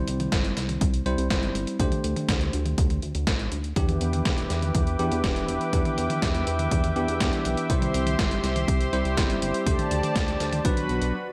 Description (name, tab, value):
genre	italo disco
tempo	122 BPM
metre	4/4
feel	straight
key	E minor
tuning	A4 = 440 Hz
part	bell-like tine electric piano	stabs	0.0-11.1 s	E3 to C5	-32 LUFS	equal	tape echo
part	chorused synth bass	bass	0.0-11.1 s	E1 to E2	-31 LUFS	equal	tube saturation
part	dusty soul sampler-style drum kit	drums	0.1-11.1 s	hi-hat, snare drum, toms	-32 LUFS	equal	overdrive, small room reverb, gated reverb
part	electronic kick drum	drums	0.3-10.7 s	none	-29 LUFS	equal	small room reverb
part	warm analog pad	sustained chords	3.8-11.1 s	F#4 to D6	-32 LUFS	equal	chorus
room	light reverb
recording	none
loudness	-25 LUFS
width	mono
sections	0.0-11.3 A section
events	stop 11.1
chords	0.0 C; 1.8 D7sus4; 3.8 Em7; 7.7 C; 9.7 D7sus4; 10.6 Bm